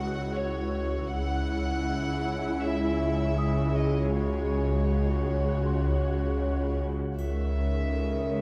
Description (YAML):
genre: cinematic, suspense film score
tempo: 79 BPM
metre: 4/4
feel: straight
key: C# harmonic minor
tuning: A4 = 441 Hz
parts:
  - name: warm symphonic violin section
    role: melody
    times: 0.0-8.4 s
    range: C#5 to F#5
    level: -38 LUFS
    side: equal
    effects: none
  - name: warm chamber viola section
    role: accompaniment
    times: 0.0-8.4 s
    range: D#3 to F#4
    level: -36 LUFS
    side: equal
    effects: none
  - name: wind-like tuned noise texture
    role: sustained chords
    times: 0.0-8.4 s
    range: E4 to D#6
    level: -39 LUFS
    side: equal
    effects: built-in reverb
  - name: warm studio cello section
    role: bass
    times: 0.0-8.4 s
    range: C#3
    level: -36 LUFS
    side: equal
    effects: none
  - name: warm symphonic double bass section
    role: bass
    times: 0.0-8.4 s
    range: C#2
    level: -32 LUFS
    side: equal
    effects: none
  - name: swarming drone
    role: drone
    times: 0.0-8.4 s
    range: C#2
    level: -37 LUFS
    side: equal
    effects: built-in reverb
  - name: small celesta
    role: texture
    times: 0.0-8.4 s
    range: A4 to D#6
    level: -46 LUFS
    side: equal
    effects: none
  - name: triangle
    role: percussion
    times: 7.2-8.4 s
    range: none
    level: -63 LUFS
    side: equal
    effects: none
room: moderate scoring stage reverb, RT60 1.9 s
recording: dark, warm production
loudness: -28 LUFS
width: mono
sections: 0.0-8.4 A section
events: none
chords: 0.0 F#sus2/C#; 1.1 C#madd9; 4.1 F#sus2/C#; 7.2 C#madd9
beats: 0.35 | 1.11 1.87 2.63 3.39 | 4.15 4.91 5.67 6.42 | 7.18 7.94